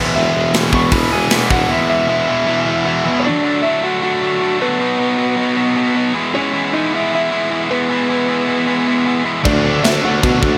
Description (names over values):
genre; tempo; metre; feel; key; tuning
punk rock; 155 BPM; 4/4; straight; E major; A4 = 440 Hz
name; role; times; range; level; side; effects
lightly driven lead guitar; melody; 0.0-10.6 s; B3 to C#6; -21 LUFS; equal; none
crunchy overdriven guitar; riff; 0.0-10.6 s; B2 to E4; -20 LUFS; equal; none
distorted electric guitar; riff; 0.0-3.3, 9.5-10.6 s; E2 to D4; -23 LUFS; equal; overdrive
sludgy distorted guitar; riff; 0.0-3.3, 9.4-10.6 s; E2 to D4; -25 LUFS; equal; overdrive
warm tuba; bass; 0.2-1.7, 9.5-10.6 s; E1 to B2; -22 LUFS; equal; none
tight metal drum kit; drums; 0.5-1.6, 9.5-10.5 s; crash cymbal, hi-hat, kick drum, snare drum; -20 LUFS; equal; none
room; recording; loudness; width
light reverb; none; -16 LUFS; mono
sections
0.0-3.2 A section; 3.2-10.6 B section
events
lead electric guitar solo 0.0-3.2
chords
0.0 E; 3.2 D; 4.8 B; 6.2 E; 9.4 D